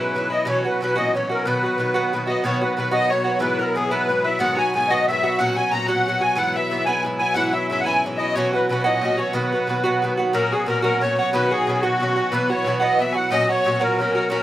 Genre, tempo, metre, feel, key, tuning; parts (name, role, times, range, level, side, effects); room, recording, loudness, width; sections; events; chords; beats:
celtic folk; 121 BPM (dotted quarters); 6/8; straight; B major; A4 = 439 Hz
musette accordion; melody; 0.0-14.4 s; F#4 to A#5; -22 LUFS; left 1 dB; slapback echo
Irish bouzouki; accompaniment; 0.0-14.4 s; G#2 to F#4; -22 LUFS; right 3 dB; slapback echo
pedal harmonium; drone; 0.0-14.4 s; B2 to F#3; -29 LUFS; left 3 dB
clear fiddle; second line; 2.3-14.4 s; F#4 to A#5; -28 LUFS; left 6 dB
light reverb; recorded outdoors, with no room sound; -18 LUFS; side -13 dB against mid
0.0-2.4 A section; 2.4-10.3 A section; 10.3-14.4 B section
0.5 F#7sus4; 1.0 F#7; 1.4 B; 3.4 E; 4.4 G#m7; 5.4 F#; 6.4 E; 7.4 C#m; 8.4 F#7sus4; 8.9 F#7; 9.3 B; 10.3 F#; 11.3 Badd9; 12.3 Esus2; 13.3 F#
| 0.46 0.95 | 1.45 1.94 | 2.43 2.92 | 3.42 3.91 | 4.40 4.90 | 5.39 5.88 | 6.38 6.87 | 7.37 7.86 | 8.36 8.85 | 9.35 9.84 | 10.34 10.83 | 11.33 11.82 | 12.32 12.82 | 13.31 13.81 | 14.31